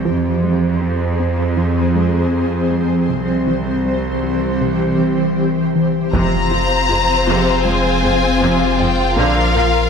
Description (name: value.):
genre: cinematic, hybrid orchestral and electronic film score.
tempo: 79 BPM.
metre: 4/4.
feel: straight.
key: F minor from 6.1 s.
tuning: A4 = 439 Hz.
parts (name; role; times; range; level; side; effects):
ethereal airy pad; sustained chords; 0.0-9.9 s; E3 to F5; -19 LUFS; left 1 dB; ensemble chorus, built-in reverb, tremolo.
clear studio cello section; bass; 0.0-9.6 s; C2 to Bb2; -20 LUFS; right 3 dB; none.
tight sequenced synth; arpeggios; 0.1-9.8 s; C3 to Bb4; -26 LUFS; equal; chorus, ping-pong delay.
clear symphonic violin section; melody; 6.1-9.9 s; F5 to Bb5; -19 LUFS; left 4 dB; none.
rich symphonic violin section; second line; 6.1-9.9 s; F4 to C5; -19 LUFS; left 4 dB; none.
clear symphonic viola section; accompaniment; 6.1-9.9 s; C3 to F4; -21 LUFS; right 1 dB; none.
punchy sub bass; bass; 6.1-9.9 s; F1 to Bb1; -21 LUFS; equal; none.
solo taiko drums; drums; 6.1-7.6 s; none; -24 LUFS; left 1 dB; none.
room: moderate scoring stage reverb, RT60 1.6 s.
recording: none.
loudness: -14 LUFS.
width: side -6 dB against mid.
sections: 0.0-6.1 A section; 6.1-9.9 B section.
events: build-up 0.0-6.1.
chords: 0.1 Fm; 3.1 C; 6.1 Fm; 9.2 Bb.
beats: | 0.06 0.82 1.58 2.33 | 3.10 3.85 4.61 5.37 | 6.13 6.89 7.65 8.41 | 9.17.